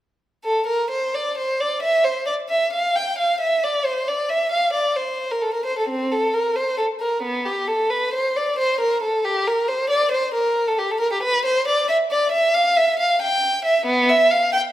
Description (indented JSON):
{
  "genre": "classical, baroque-style suite movement for unaccompanied violin",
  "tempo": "90 BPM (dotted quarters)",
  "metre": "12/8",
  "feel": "rubato",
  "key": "unclear",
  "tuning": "A4 = 440 Hz",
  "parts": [
    { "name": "rich violin", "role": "solo", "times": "0.4-14.6 s", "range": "B3 to G5", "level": "-18 LUFS", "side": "equal", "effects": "none" }
  ],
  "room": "moderate recital hall reverb, RT60 1.6 s",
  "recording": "none",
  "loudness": "-18 LUFS",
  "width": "side -13 dB against mid",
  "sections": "0.4-14.7 A section",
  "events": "none",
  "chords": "none",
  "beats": "| 0.45 1.14 1.82 2.50 | 3.19 3.86 4.53 5.20 | 5.90 6.57 7.24 7.91 | 8.58 9.24 9.89 10.55 | 11.22 11.88 12.54 13.21 | 13.86 14.53"
}